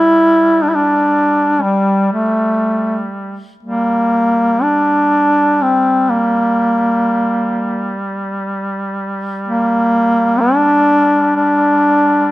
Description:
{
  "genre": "caucasian folk, Caucasian lament",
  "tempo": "free time",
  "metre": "none",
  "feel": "none",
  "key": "G dorian",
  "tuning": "A4 = 440 Hz",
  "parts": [
    { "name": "warm duduk", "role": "melody", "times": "0.0-12.3 s", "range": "G3 to E4", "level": "-12 LUFS", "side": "equal", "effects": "none" },
    { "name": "clear duduk", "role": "drone", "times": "0.0-12.3 s", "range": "G3", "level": "-22 LUFS", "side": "equal", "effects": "none" }
  ],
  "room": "light reverb",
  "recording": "close, detailed microphones",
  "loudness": "-12 LUFS",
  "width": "side -16 dB against mid",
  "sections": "0.0-12.3 A section",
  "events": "none",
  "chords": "none"
}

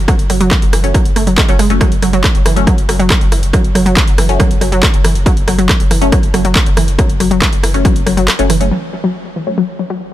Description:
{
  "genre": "driving peak-time techno",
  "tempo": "139 BPM",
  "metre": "4/4",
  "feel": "straight",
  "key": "F# minor",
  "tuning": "A4 = 439 Hz",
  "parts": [
    { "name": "saturated sub bass", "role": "bass", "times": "0.0-8.7 s", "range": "F#1", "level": "-16 LUFS", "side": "equal", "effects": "overdrive, sidechain pumping, low-pass filter" },
    { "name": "analog pluck", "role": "riff", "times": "0.1-10.0 s", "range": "E3 to A3", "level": "-16 LUFS", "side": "equal", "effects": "chorus, vintage 12-bit sampler grit, sidechain pumping, tape echo" },
    { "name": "electronic kick drum", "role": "drums", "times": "0.1-7.9 s", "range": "none", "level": "-12 LUFS", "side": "equal", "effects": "overdrive, small room ambience" },
    { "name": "techno drum kit", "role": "drums", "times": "0.1-8.7 s", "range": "handclaps, hi-hat, rim click", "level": "-17 LUFS", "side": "equal", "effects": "overdrive, sidechain pumping on hats, low-pass filter on hats, small room ambience, low-pass filter on snare" },
    { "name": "filtered dub chord stab", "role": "stabs", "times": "0.8-9.6 s", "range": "F#3 to C#4", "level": "-20 LUFS", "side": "left 3 dB", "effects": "phaser, wide subtle chorus, sidechain pumping, digital delay" }
  ],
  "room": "digital ambience",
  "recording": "none",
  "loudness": "-10 LUFS",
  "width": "side -13 dB against mid",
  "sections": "0.0-8.7 A section; 8.7-10.1 B section",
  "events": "kick drops out 8.3-8.7; filter sweep on synth arpeggio sound 8.7-10.1; filter sweep on synth stab 8.7-10.1",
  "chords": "0.0 F#m; 8.7 N.C."
}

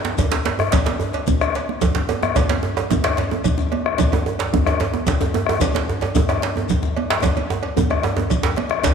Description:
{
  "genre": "west african traditional, West African drum ensemble",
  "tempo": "148 BPM (dotted quarters)",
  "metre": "12/8",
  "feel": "straight",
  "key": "none",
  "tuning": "none",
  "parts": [
    { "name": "congas", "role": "percussion", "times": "0.0-8.8 s", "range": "none", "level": "-26 LUFS", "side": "right 6 dB", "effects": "none" },
    { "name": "djembe", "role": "percussion", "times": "0.0-8.9 s", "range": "none", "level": "-23 LUFS", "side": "right 4 dB", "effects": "none" },
    { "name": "bombo", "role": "percussion", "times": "0.2-8.9 s", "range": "none", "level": "-23 LUFS", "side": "left 2 dB", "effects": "none" },
    { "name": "cowbell", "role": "percussion", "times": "0.2-8.9 s", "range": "none", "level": "-28 LUFS", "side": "right 7 dB", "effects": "none" },
    { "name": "djembe", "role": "percussion", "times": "0.2-8.9 s", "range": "none", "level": "-24 LUFS", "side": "left 4 dB", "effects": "none" },
    { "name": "shekere", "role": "percussion", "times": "0.2-8.9 s", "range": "none", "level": "-33 LUFS", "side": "left 6 dB", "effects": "none" }
  ],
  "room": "wet echo chamber reverb, RT60 2.2 s",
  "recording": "1960s-style stereo with parts hard left and right",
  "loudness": "-18 LUFS",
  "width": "side -6 dB against mid",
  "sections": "0.0-8.8 A section",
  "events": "drum fill 2.0-2.4, 7.2-8.8",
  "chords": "none"
}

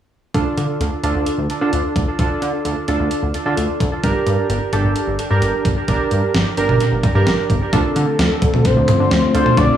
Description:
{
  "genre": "synth-pop",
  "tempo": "130 BPM",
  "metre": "4/4",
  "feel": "straight",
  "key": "D minor",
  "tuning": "A4 = 440 Hz",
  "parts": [
    { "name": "warm analog keys", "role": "accompaniment", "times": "0.3-9.8 s", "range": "D4 to Bb4", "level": "-20 LUFS", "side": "right 3 dB", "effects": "chorus, analog delay" },
    { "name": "chorused synth bass", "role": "bass", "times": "0.3-9.7 s", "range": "G1 to D3", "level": "-20 LUFS", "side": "equal", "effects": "none" },
    { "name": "clean 12-bit digital drum machine", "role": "drums", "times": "0.3-9.7 s", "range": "hi-hat, kick drum, snare drum, toms", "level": "-19 LUFS", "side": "equal", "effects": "analog delay" },
    { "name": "expressive synth lead", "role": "melody", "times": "7.7-9.8 s", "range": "A4 to D5", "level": "-19 LUFS", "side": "left 3 dB", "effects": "chorus, analog delay" },
    { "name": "string machine, violas", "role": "sustained chords", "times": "7.7-9.8 s", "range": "D3 to F4", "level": "-20 LUFS", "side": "left 1 dB", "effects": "ensemble chorus" }
  ],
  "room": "moderate plate reverb, RT60 1.9 s",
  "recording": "echo-heavy mix, studio reverb",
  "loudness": "-15 LUFS",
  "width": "side -10 dB against mid",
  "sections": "0.3-7.7 A section; 7.7-9.8 B section",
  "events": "none",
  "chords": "0.3 Dm; 4.0 Gm; 7.7 Dm7"
}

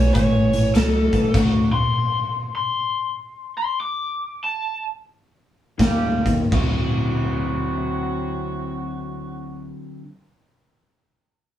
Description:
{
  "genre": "electric blues shuffle",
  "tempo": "81-101 BPM",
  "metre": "4/4",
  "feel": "swing 64% on 8ths",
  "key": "D mixolydian",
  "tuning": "A4 = 440 Hz",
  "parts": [
    { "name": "lead guitar through a small cranked amp", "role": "melody", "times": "0.0-4.8 s", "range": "A4 to D6", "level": "-23 LUFS", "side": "left 2 dB", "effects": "overdrive" },
    { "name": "electric guitar through a small old amp", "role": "riff", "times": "0.0-1.7, 5.8-10.1 s", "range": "A2 to E4", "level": "-23 LUFS", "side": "left 1 dB", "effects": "none" },
    { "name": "upright bass", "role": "bass", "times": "0.0-1.8, 5.8-9.7 s", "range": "A1 to Eb2", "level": "-25 LUFS", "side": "right 1 dB", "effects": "none" },
    { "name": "raw garage drum kit", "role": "drums", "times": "0.1-1.5, 5.8-6.7 s", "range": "crash cymbal, hi-hat, kick drum, snare drum", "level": "-22 LUFS", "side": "equal", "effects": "none" },
    { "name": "dark horn section", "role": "stabs", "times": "1.3-1.9, 5.8-9.7 s", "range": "F#3 to G4", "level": "-29 LUFS", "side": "right 4 dB", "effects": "none" }
  ],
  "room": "moderate small room reverb, RT60 0.5 s",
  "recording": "band playing live in one room, small room ambience",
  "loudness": "-19 LUFS",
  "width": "side -11 dB against mid",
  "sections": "0.0-6.5 A section; 6.5-9.5 B section",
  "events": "slowing down 1.3-6.5; stop 1.3-5.8",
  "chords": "0.0 A; 1.3 D9; 5.8 Eb9; 6.5 D9"
}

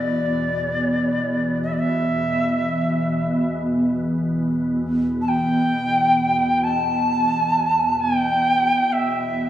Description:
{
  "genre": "world meditative, free-time meditation music",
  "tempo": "free time",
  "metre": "none",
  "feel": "none",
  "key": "E minor pentatonic",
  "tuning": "A4 = 440 Hz",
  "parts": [
    { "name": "bright reedy Native American-style cedar flute", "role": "melody", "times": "0.0-9.5 s", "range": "D5 to A5", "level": "-20 LUFS", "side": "equal", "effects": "analog delay" },
    { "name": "soft additive organ-like pad", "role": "drone", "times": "0.0-9.5 s", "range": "E2 to B2", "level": "-22 LUFS", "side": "equal", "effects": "ensemble chorus, built-in reverb" },
    { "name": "tubular bells", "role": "texture", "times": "0.0-0.9 s", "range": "none", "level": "barely audible", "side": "none", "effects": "none" }
  ],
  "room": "wet echo chamber reverb, RT60 2.4 s",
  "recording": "small room ambience",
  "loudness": "-18 LUFS",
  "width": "side -11 dB against mid",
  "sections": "0.0-9.5 A section",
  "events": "none",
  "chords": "none"
}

